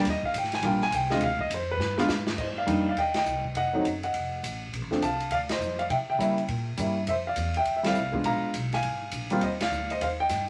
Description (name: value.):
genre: jazz piano trio.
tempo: 205 BPM.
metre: 4/4.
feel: swing 63% on 8ths.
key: C minor.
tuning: A4 = 440 Hz.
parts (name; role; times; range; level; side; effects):
warm grand piano; melody; 0.0-10.5 s; F3 to Bb5; -29 LUFS; equal; none.
upright bass; bass; 0.0-10.5 s; F1 to Db3; -37 LUFS; equal; none.
swinging big-band drum kit; drums; 0.0-10.4 s; crash cymbal, hi-hat, kick drum, ride cymbal, snare drum; -37 LUFS; equal; none.
room: moderate studio reverb, RT60 0.6 s.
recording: none.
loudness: -28 LUFS.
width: mono.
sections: 0.0-2.4 A section; 2.4-10.5 B section.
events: grand piano solo 0.0-2.4; drum fill 1.8-2.4; band accent 3.1, 5.5, 7.8, 9.6.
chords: 0.0 Ebmaj7; 1.2 Dm7; 1.8 G(b9); 2.4 Cm; 3.6 F7b9; 4.7 Bbmaj9 (rootless); 5.9 C7b9; 7.1 Fmaj7sus2; 8.2 Bb7b9; 9.4 Eb.